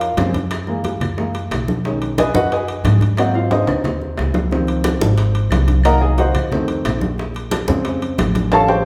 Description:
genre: Afro-Cuban jazz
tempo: 180 BPM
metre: 4/4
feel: straight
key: Bb minor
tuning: A4 = 440 Hz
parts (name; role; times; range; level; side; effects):
- warm baby grand piano; accompaniment; 0.0-8.8 s; Db3 to Bb5; -22 LUFS; equal; none
- upright bass; bass; 0.0-8.8 s; Ab1 to G#2; -22 LUFS; equal; none
- congas; percussion; 0.0-8.8 s; none; -25 LUFS; equal; none
- timbales; percussion; 0.0-8.8 s; none; -30 LUFS; equal; none
- bongos; percussion; 0.2-8.7 s; none; -33 LUFS; equal; none
- claves; percussion; 0.2-8.7 s; none; -37 LUFS; equal; none
room: wet large studio reverb, RT60 1.2 s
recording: band playing live in one room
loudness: -18 LUFS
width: mono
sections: 0.0-8.8 A section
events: grand piano solo 0.0-8.8; drum fill 3.5-4.5, 8.5-8.8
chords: 0.0 Bbm7; 0.5 Gb7; 1.8 B6; 3.2 Ab7; 4.5 Dbmaj7; 5.8 Cm7b5; 6.5 F7; 7.2 Bbm7

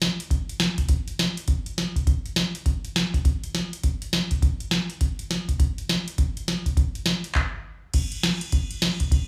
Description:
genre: rock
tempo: 204 BPM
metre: 4/4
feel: swing 62% on 8ths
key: none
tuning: none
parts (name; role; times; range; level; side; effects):
- booming analog drum machine; drums; 0.0-9.2 s; crash cymbal, handclaps, hi-hat, kick drum, ride cymbal, snare drum; -25 LUFS; equal; none
room: moderate large studio reverb, RT60 1.3 s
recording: band playing live in one room, small room reverb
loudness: -25 LUFS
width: mono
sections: 0.0-7.9 A section; 7.9-9.3 B section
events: stop 7.4-7.9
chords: none

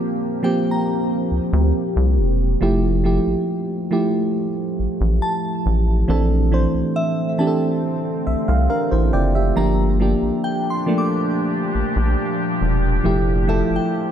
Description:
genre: R&B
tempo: 69 BPM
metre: 4/4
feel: straight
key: unclear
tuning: A4 = 440 Hz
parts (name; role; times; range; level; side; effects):
- mellow FM electric piano; accompaniment; 0.0-14.1 s; E3 to G5; -21 LUFS; right 1 dB; chorus
- deep dark ambient pad; sustained chords; 0.0-14.1 s; Bb2 to G4; -25 LUFS; equal; chorus, built-in reverb
- glassy synth bell; texture; 0.4-14.1 s; E5 to D6; -28 LUFS; equal; chorus, tape echo
- rubbery square bass; bass; 1.3-13.8 s; E1 to D2; -18 LUFS; equal; none
room: light reverb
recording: none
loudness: -17 LUFS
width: side -9 dB against mid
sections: 0.0-14.1 A section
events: FM electric piano fill 7.8-9.6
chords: 0.0 C7sus4; 2.6 Fmaj9; 6.1 Bbmaj9#11; 9.6 Gm7; 13.1 Fmaj9

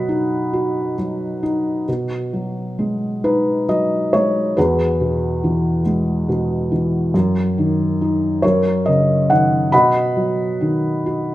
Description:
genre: classical, lyrical solo piano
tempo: 46 BPM (dotted quarters)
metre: 6/8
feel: rubato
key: B major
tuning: A4 = 440 Hz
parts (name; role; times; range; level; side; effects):
- felt-muted upright piano; solo; 0.0-11.3 s; E2 to B5; -16 LUFS; equal; none
room: moderate recital hall reverb, RT60 1.6 s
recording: minimal, uncompressed stereo recording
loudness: -16 LUFS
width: side -15 dB against mid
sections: 0.0-1.9 A section; 1.9-11.3 A section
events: none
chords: 0.0 B; 1.9 B6; 4.6 Eadd9; 7.1 D#m/F#; 8.4 F#6; 9.7 B

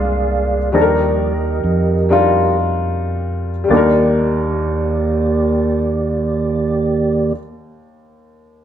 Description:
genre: slow gospel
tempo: 34-48 BPM (dotted quarters)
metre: 6/8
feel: straight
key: Eb major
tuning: A4 = 440 Hz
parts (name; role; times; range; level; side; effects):
- warm upright piano; accompaniment; 0.0-8.6 s; Eb2 to Bb4; -18 LUFS; left 3 dB; none
- percussive tonewheel organ; sustained chords; 0.0-7.3 s; Eb3 to F5; -18 LUFS; right 3 dB; fast rotary speaker, chorus vibrato
- fingered electric bass; bass; 0.0-7.3 s; C2 to F2; -20 LUFS; equal; none
room: moderate large studio reverb, RT60 0.9 s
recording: band playing live in one room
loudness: -14 LUFS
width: side -9 dB against mid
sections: 0.0-3.7 A section; 3.7-7.2 B section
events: slowing down 0.0-3.7; tonewheel organ solo 0.0-3.7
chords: 0.0 Bb7; 0.7 Ebmaj7

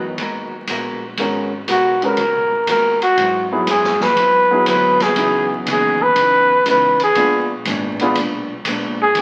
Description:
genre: jazz, big band swing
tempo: 120 BPM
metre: 4/4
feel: swing 68% on 8ths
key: G# minor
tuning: A4 = 440 Hz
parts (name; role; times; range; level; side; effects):
- dark saxophone section; melody; 0.0-0.7 s; F#3 to B4; -32 LUFS; equal; none
- hollow-body jazz guitar; accompaniment; 0.0-9.2 s; G#2 to A#4; -28 LUFS; equal; none
- warm grand piano; accompaniment; 0.0-8.2 s; E3 to B4; -24 LUFS; equal; none
- upright bass; bass; 0.0-9.2 s; G#1 to G#2; -37 LUFS; equal; none
- swinging big-band drum kit; drums; 0.2-9.2 s; hi-hat, kick drum, ride cymbal, snare drum; -27 LUFS; equal; none
- breathy trumpet; melody; 1.7-9.2 s; F#4 to B4; -16 LUFS; equal; none
room: wet large studio reverb, RT60 0.9 s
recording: very old 78 rpm record, vinyl crackle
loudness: -17 LUFS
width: mono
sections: 0.0-1.2 A section; 1.2-9.2 B section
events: trumpet solo 1.2-9.2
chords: 0.0 G#m9; 3.2 G#7alt; 5.2 C#m9; 7.2 A#7b9

